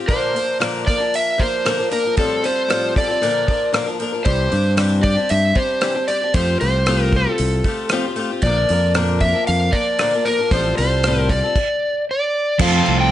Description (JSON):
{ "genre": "folk rock and heartland rock", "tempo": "115 BPM", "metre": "4/4", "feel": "straight", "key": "F major", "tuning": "A4 = 440 Hz", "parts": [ { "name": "picked swing-style acoustic guitar", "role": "accompaniment", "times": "0.0-13.1 s", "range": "A2 to Bb4", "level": "-22 LUFS", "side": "left 3 dB", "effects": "none" }, { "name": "overdriven slide guitar", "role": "melody", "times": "0.1-13.1 s", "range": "A4 to G5", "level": "-20 LUFS", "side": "equal", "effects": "none" }, { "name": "damped 70s drum kit", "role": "drums", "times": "0.1-13.0 s", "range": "crash cymbal, hi-hat, kick drum, rim click", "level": "-23 LUFS", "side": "right 1 dB", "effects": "none" }, { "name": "modern bright fingered electric bass", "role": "bass", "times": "4.3-13.1 s", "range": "A1 to G2", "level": "-19 LUFS", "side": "equal", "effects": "none" }, { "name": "raw garage guitar", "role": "riff", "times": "12.6-13.1 s", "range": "F2 to F4", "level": "-18 LUFS", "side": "right 3 dB", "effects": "overdrive" } ], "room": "light reverb", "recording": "nothing above 10.8 kHz", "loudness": "-16 LUFS", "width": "side -12 dB against mid", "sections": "0.0-12.6 A section", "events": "stop 11.6-12.6", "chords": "0.1 Bb; 2.2 Fadd9/A; 3.2 Bb; 4.3 Cadd9; 6.3 Fadd9; 8.4 Bb; 10.5 Fadd9/A; 11.6 N.C.; 12.6 F" }